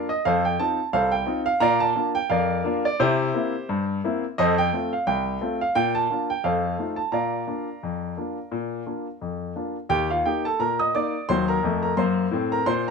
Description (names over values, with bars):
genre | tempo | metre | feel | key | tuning
ragtime piano | 87 BPM | 2/4 | swing 57% on 16ths | Bb major | A4 = 441 Hz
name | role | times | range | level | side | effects
clear baby grand piano | solo | 0.0-12.9 s | C2 to Eb6 | -22 LUFS | equal | none
room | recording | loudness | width
moderate studio reverb, RT60 0.6 s | dark, warm production | -22 LUFS | side -5 dB against mid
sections
0.0-9.9 A section; 9.9-12.9 B section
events
none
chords
0.3 F7; 1.6 Bb; 3.0 C7; 4.4 F; 5.8 Bb; 6.4 F7; 7.1 Bb; 9.9 Eb; 11.3 Ebm